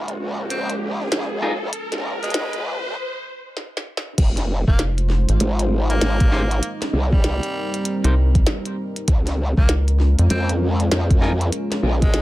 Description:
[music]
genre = glitch hop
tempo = 98 BPM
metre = 4/4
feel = swing 62% on 16ths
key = F minor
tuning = A4 = 441 Hz
[part]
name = dark analog pad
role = sustained chords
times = 0.0-12.2 s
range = G3 to C5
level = -28 LUFS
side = equal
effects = chorus, sidechain pumping
[part]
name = growl bass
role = bass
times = 0.0-12.2 s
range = F1 to F2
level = -22 LUFS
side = equal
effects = chorus, tube saturation, high-pass filter
[part]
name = riser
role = sound effects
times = 0.0-3.0 s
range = none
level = -29 LUFS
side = equal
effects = none
[part]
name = glitchy drum kit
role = drums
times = 0.1-12.2 s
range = crash cymbal, hi-hat, snare drum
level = -26 LUFS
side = equal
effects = none
[part]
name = growling tenor saxophone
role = melody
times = 0.5-12.2 s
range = G3 to C4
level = -29 LUFS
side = equal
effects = digital delay
[part]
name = clean electric guitar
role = stabs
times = 1.4-1.5, 6.3-11.3 s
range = Eb4 to C5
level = -27 LUFS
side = left 1 dB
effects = vintage 12-bit sampler grit, sidechain pumping, digital delay
[part]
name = electronic kick drum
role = drums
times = 4.2-12.1 s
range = none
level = -17 LUFS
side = equal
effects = none
[part]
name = rubbery square bass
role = bass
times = 4.7-10.3 s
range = F1 to F2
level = -16 LUFS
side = equal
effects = none
[sound]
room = little or no reverb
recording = high-pass filter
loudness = -18 LUFS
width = side -17 dB against mid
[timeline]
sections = 0.0-4.2 A section; 4.2-12.2 B section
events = build-up 0.0-4.2; riser 0.0-3.0; filter sweep on analog synth pad 0.0-4.2; filter sweep 0.0-4.2; break 3.0-4.2; drum fill 3.6-4.2; drop 4.2-12.2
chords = 0.0 Db6; 1.7 Bbm7; 4.2 Fm7; 6.6 Cm7; 9.1 Db6; 11.5 Bbm7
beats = 0.51 1.12 | 1.73 2.34 2.95 3.57 | 4.18 4.79 5.40 6.01 | 6.63 7.24 7.85 8.46 | 9.08 9.69 10.30 10.91 | 11.53 12.14

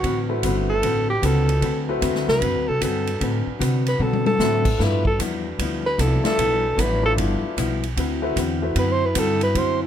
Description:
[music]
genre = jazz, big band swing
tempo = 151 BPM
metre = 4/4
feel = swing 64% on 8ths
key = D mixolydian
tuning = A4 = 440 Hz
[part]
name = breathy alto saxophone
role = melody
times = 0.0-9.9 s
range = E4 to C5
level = -22 LUFS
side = right 1 dB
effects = none
[part]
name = vintage hollow-body jazz guitar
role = accompaniment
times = 0.0-9.8 s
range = G2 to B4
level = -27 LUFS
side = left 5 dB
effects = none
[part]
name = muted trombone section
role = sustained chords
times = 0.0-9.9 s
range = F#3 to B4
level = -31 LUFS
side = equal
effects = none
[part]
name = upright bass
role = bass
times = 0.0-9.9 s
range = G1 to C3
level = -24 LUFS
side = right 1 dB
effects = none
[part]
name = swinging big-band drum kit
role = drums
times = 0.0-9.7 s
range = crash cymbal, hi-hat, kick drum, ride cymbal, snare drum, toms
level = -27 LUFS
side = equal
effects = none
[part]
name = clear concert grand piano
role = accompaniment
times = 0.3-8.7 s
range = A3 to D5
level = -26 LUFS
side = left 3 dB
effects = none
[sound]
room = moderate booth ambience, RT60 0.2 s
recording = none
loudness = -19 LUFS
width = side -9 dB against mid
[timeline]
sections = 0.0-9.9 A section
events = alto saxophone solo 0.0-9.9; drum fill 4.0-4.4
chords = 0.0 D13; 4.8 G13; 8.0 D13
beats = | 0.03 0.43 0.82 1.22 | 1.62 2.02 2.41 2.81 | 3.21 3.60 4.00 4.39 | 4.79 5.19 5.58 5.98 | 6.38 6.78 7.17 7.57 | 7.96 8.36 8.76 9.15 | 9.55

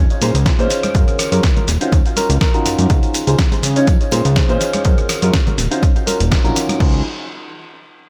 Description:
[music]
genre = filtered disco house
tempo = 123 BPM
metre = 4/4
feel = swing 54% on 16ths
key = Db major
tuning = A4 = 440 Hz
[part]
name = fat analog bass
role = bass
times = 0.0-7.0 s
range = Eb1 to Db3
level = -19 LUFS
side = equal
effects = sidechain pumping
[part]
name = dusty soul sampler-style drum kit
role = drums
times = 0.1-6.9 s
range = crash cymbal, hi-hat, rim click, shaker, snare drum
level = -24 LUFS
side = equal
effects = analog delay
[part]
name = tambourine and congas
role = percussion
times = 0.1-6.8 s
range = none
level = -31 LUFS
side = equal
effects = sidechain pumping on perc
[part]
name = dark concert grand piano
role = accompaniment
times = 0.2-7.0 s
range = Db4 to Db5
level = -22 LUFS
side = equal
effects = phaser, sidechain pumping, analog delay
[part]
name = electronic kick drum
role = drums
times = 0.5-6.9 s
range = none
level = -17 LUFS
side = equal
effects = none
[sound]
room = little or no reverb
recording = echo-heavy mix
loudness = -15 LUFS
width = mono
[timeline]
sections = 0.0-6.8 A section; 6.8-8.1 B section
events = drop 0.0-6.8; band accent 6.3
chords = 0.0 Dbmaj9; 0.9 Gbmaj9; 1.7 Ebm9; 2.9 Dbmaj9; 4.9 Gbmaj9; 5.6 Ebm9; 6.8 Dbmaj9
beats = 0.46 | 0.95 1.44 1.92 2.41 | 2.90 3.39 3.88 4.36 | 4.85 5.34 5.83 6.31 | 6.80

